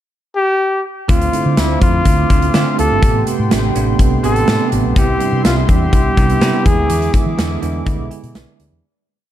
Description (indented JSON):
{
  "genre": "1980s-style pop",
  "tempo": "124 BPM",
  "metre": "4/4",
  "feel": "straight",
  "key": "unclear",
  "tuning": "A4 = 435 Hz",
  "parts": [
    { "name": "warm flugelhorn", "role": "melody", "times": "0.4-7.1 s", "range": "E4 to A4", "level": "-18 LUFS", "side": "left 2 dB", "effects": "tape echo" },
    { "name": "bell-like tine electric piano", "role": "accompaniment", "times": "1.1-9.1 s", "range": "C3 to G#5", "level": "-19 LUFS", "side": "right 5 dB", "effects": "fast stereo tremolo" },
    { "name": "brassy analog pad", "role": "sustained chords", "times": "1.1-8.8 s", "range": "B3 to D6", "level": "-26 LUFS", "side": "left 1 dB", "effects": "chorus" },
    { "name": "mellow fretless electric bass", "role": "bass", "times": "1.1-8.8 s", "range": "G1 to E3", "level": "-18 LUFS", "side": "left 1 dB", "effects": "none" },
    { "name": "big rock drum kit", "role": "drums", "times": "1.1-8.7 s", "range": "hi-hat, kick drum, snare drum", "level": "-16 LUFS", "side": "equal", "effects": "none" }
  ],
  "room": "light reverb",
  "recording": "dark, warm production",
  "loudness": "-12 LUFS",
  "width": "side -12 dB against mid",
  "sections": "0.0-1.1 pickup bar; 1.1-8.8 verse",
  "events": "fade-out 6.9-8.8; tine electric piano fill 7.9-8.8",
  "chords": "0.0 N.C.; 1.1 Dm7; 3.0 Am9; 5.0 Cmaj7; 6.7 E7"
}